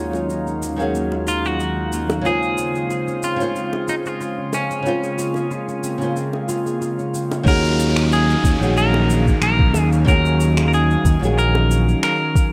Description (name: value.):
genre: sunset chillout.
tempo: 92 BPM.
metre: 4/4.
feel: swing 54% on 16ths.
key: unclear.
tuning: A4 = 440 Hz.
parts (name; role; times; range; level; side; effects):
nylon-string guitar; accompaniment; 0.0-12.5 s; Db3 to F5; -27 LUFS; equal; vintage 12-bit sampler grit, digital delay.
airy breathy pad; sustained chords; 0.0-12.5 s; Eb2 to F5; -28 LUFS; equal; chorus.
concert harp; arpeggios; 0.0-10.2 s; Bb3 to Ab4; -30 LUFS; equal; digital delay.
electronic shaker and finger snaps; drums; 0.1-12.5 s; none; -33 LUFS; equal; overdrive.
bongos; percussion; 0.1-11.7 s; none; -29 LUFS; equal; none.
clean electric guitar; melody; 1.3-12.5 s; Db4 to Bb4; -26 LUFS; equal; delay.
overdriven fingered electric bass; bass; 7.5-11.9 s; Bb1 to Eb2; -20 LUFS; equal; none.
electronic kick drum; drums; 7.5-12.5 s; none; -19 LUFS; equal; none.
downlifter; sound effects; 7.5-12.5 s; none; -33 LUFS; equal; none.
room: light reverb, digital ambience.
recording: none.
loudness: -19 LUFS.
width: mono.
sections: 0.0-7.5 A section; 7.5-12.5 B section.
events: filter sweep on harp 0.0-7.5.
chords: 0.0 Ebm11; 2.2 Dbmaj7; 7.5 Ebm11.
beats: 0.29 0.94 1.59 | 2.25 2.90 3.55 4.20 | 4.85 5.51 6.16 6.81 | 7.46 8.12 8.77 9.42 | 10.07 10.72 11.38 12.03.